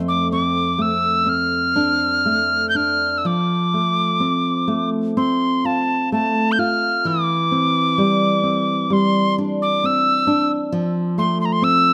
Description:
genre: celtic folk, Celtic slow air.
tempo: 60-67 BPM.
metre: 4/4.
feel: rubato.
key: unclear.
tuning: A4 = 440 Hz.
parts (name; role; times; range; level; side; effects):
nylon-string guitar; accompaniment; 0.0-11.9 s; F2 to F4; -22 LUFS; equal; none.
wooden whistle; melody; 0.1-11.9 s; A5 to G6; -21 LUFS; equal; none.
room: light reverb.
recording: close, detailed microphones.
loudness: -19 LUFS.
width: mono.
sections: 0.0-11.9 A section.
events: none.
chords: 0.0 F6; 7.1 Cadd9/E; 10.7 F.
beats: 0.32 1.28 2.26 | 3.25 4.21 5.17 6.12 | 7.05 7.98 8.91 9.83 | 10.72 11.62.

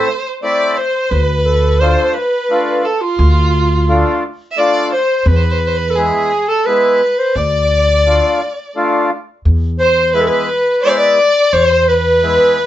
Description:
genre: klezmer.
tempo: 86 BPM.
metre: 3/4.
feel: straight.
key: unclear.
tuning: A4 = 440 Hz.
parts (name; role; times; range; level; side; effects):
warm clarinet; melody; 0.0-12.7 s; F4 to D5; -14 LUFS; left 1 dB; none.
rich violin; second line; 0.0-12.7 s; F4 to E5; -18 LUFS; right 2 dB; none.
mellow accordion; accompaniment; 0.0-12.6 s; G#3 to F4; -17 LUFS; left 1 dB; none.
upright bass; bass; 1.1-12.4 s; D2 to E2; -14 LUFS; equal; none.
room: moderate studio reverb, RT60 0.5 s.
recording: band playing live in one room, nothing above 7.9 kHz.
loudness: -11 LUFS.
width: side -12 dB against mid.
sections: 0.0-9.4 A section; 9.4-12.7 B section.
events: none.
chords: 0.0 Am; 1.1 Dm; 5.3 E; 7.4 Dm; 9.4 E.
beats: 0.42 | 1.12 1.81 2.50 | 3.20 3.89 4.58 | 5.28 5.97 6.67 | 7.36 8.05 8.75 | 9.45 10.14 10.84 | 11.53 12.23.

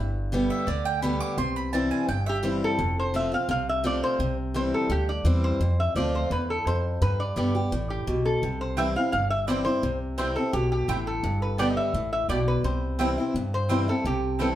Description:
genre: bluegrass.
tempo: 170 BPM.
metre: 4/4.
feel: straight.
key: C major.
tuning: A4 = 441 Hz.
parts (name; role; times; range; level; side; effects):
picked acoustic archtop guitar; accompaniment; 0.0-14.6 s; E2 to G4; -28 LUFS; left 1 dB; none.
upright bass; bass; 0.0-14.6 s; F1 to G2; -28 LUFS; equal; none.
mandolin; stabs; 0.5-2.4, 8.8-14.5 s; B3 to D6; -31 LUFS; right 5 dB; none.
lap resonator guitar; melody; 2.3-14.6 s; G4 to F5; -28 LUFS; equal; none.
room: moderate studio reverb, RT60 0.7 s.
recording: heard from further back in the room.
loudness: -23 LUFS.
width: side -12 dB against mid.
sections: 0.0-2.8 A section; 2.8-14.0 B section.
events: mandolin solo 0.0-2.8.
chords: 0.0 G; 1.4 C; 2.8 F; 4.2 C; 5.6 F; 7.0 G; 8.4 C; 11.2 G; 12.6 C.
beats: 0.32 0.68 1.03 | 1.38 1.73 2.08 2.44 | 2.79 3.14 3.49 3.85 | 4.20 4.55 4.90 5.25 | 5.61 5.96 6.31 6.66 | 7.01 7.37 7.72 8.07 | 8.42 8.78 9.13 9.48 | 9.83 10.18 10.53 10.89 | 11.24 11.59 11.94 12.29 | 12.64 12.99 13.35 13.70 | 14.05 14.40.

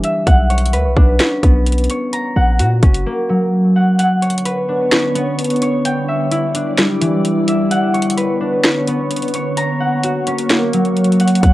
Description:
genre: hip hop, trap.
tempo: 129 BPM.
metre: 4/4.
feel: half-time.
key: B harmonic minor.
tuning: A4 = 440 Hz.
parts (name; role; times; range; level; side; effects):
concert harp; arpeggios; 0.0-11.5 s; E3 to A#5; -16 LUFS; equal; low-pass filter, analog delay.
trap drum kit; drums; 0.0-11.5 s; hi-hat, kick drum, snare drum; -15 LUFS; equal; cassette tape.
warm 808-style bass; bass; 0.3-3.1, 11.4-11.5 s; F#1 to A#2; -15 LUFS; equal; none.
glassy FM pad; sustained chords; 4.4-11.5 s; D3 to D5; -19 LUFS; equal; ensemble chorus, built-in reverb.
room: light reverb.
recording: home recording on cassette.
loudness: -13 LUFS.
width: side -16 dB against mid.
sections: 0.0-11.5 A section.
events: silent gap 3.1-4.0; break 4.0-11.4.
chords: 0.3 Bmadd9; 2.1 F#; 4.0 Bmadd9; 5.9 Em7; 7.7 Bmadd9; 9.6 F#.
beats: | 0.27 0.73 1.20 1.67 | 2.13 2.60 3.06 3.53 | 3.99 4.46 4.92 5.39 | 5.85 6.32 6.78 7.25 | 7.71 8.18 8.64 9.11 | 9.57 10.04 10.50 10.97 | 11.43.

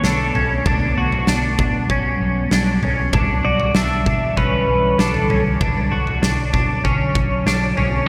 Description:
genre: dream pop.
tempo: 97 BPM.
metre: 4/4.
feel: straight.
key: unclear.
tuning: A4 = 440 Hz.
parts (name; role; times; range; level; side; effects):
pedal steel guitar; melody; 0.0-5.4 s; A4 to E5; -25 LUFS; equal; subtle chorus, delay.
ethereal airy pad; sustained chords; 0.0-8.1 s; D3 to C#5; -26 LUFS; equal; ensemble chorus, built-in reverb.
clean electric guitar; arpeggios; 0.0-8.1 s; C#4 to F#4; -24 LUFS; equal; ensemble chorus, delay.
vintage muted fingered electric bass; bass; 0.0-8.0 s; B1 to B2; -26 LUFS; equal; none.
huge arena drum kit; drums; 0.0-7.9 s; kick drum, snare drum, toms; -24 LUFS; equal; gated reverb.
room: wet lush hall reverb, RT60 2.8 s.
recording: bright 1980s-style digital production.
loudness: -18 LUFS.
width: mono.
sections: 0.0-8.1 A section.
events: none.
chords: 0.0 Bm9; 0.7 Gmaj7/B; 3.1 Em9/B; 5.6 Dmaj7/B.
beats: 0.04 | 0.66 1.28 1.90 2.52 | 3.13 3.75 4.37 4.99 | 5.61 6.23 6.85 7.46.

